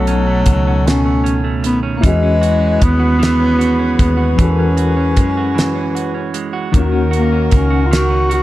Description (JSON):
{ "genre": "slow six-eight R&B", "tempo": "51 BPM (dotted quarters)", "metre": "6/8", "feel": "straight", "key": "unclear", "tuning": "A4 = 441 Hz", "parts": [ { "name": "warm bass clarinet", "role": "melody", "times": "0.0-8.4 s", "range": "F#3 to F#4", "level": "-17 LUFS", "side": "equal", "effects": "none" }, { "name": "clean electric guitar", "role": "second line", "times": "0.0-8.4 s", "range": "B2 to F#4", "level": "-21 LUFS", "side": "right 5 dB", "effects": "none" }, { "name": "reed electric piano", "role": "accompaniment", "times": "0.0-8.4 s", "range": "B2 to A#4", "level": "-24 LUFS", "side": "left 5 dB", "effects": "tremolo" }, { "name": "mellow horn section", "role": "stabs", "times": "0.0-8.4 s", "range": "D#4 to B4", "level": "-24 LUFS", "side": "left 3 dB", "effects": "slapback echo" }, { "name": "vintage muted fingered electric bass", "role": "bass", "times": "0.0-8.4 s", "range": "B1 to F#2", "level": "-17 LUFS", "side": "equal", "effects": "none" }, { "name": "damped 70s drum kit", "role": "drums", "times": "0.1-8.4 s", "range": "hi-hat, kick drum, snare drum", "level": "-15 LUFS", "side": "equal", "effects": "none" } ], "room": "light reverb, small room ambience", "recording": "dark, warm production", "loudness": "-12 LUFS", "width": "side -15 dB against mid", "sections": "0.0-8.4 A section", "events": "break 5.6-6.7", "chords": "0.0 B9; 2.0 E69; 6.7 D#m7", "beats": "0.86 | 2.04 3.21 | 4.39 5.57 | 6.74 7.92" }